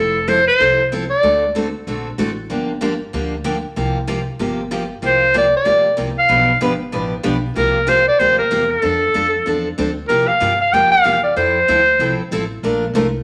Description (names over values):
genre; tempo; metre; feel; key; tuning
country, western swing; 189 BPM; 4/4; swing 62% on 8ths; unclear; A4 = 440 Hz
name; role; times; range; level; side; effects
breathy clarinet; melody; 0.0-1.5, 5.1-12.3 s; A4 to G5; -16 LUFS; equal; none
picked steel-string acoustic guitar; accompaniment; 0.0-13.1 s; B2 to B4; -23 LUFS; equal; none
upright bass; bass; 0.0-13.2 s; F1 to G2; -28 LUFS; equal; none
room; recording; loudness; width
wet studio reverb, RT60 1.0 s; none; -17 LUFS; mono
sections
0.0-10.1 A section; 10.1-13.2 B section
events
none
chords
0.0 Fmaj7; 1.2 D7; 2.5 Gm7; 3.8 C7sus4; 5.0 C9sus4; 6.3 G7; 7.6 C7sus4; 8.8 F6; 10.1 C7sus4; 11.4 Fmaj7; 12.6 Bbmaj7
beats
0.28 0.60 0.92 | 1.23 1.55 1.86 2.18 | 2.50 2.82 3.13 3.45 | 3.77 4.08 4.40 4.72 | 5.03 5.35 5.67 5.98 | 6.30 6.62 6.93 7.25 | 7.57 7.88 8.20 8.52 | 8.83 9.15 9.47 9.78 | 10.10 10.42 10.73 11.05 | 11.37 11.68 12.00 12.31 | 12.63 12.95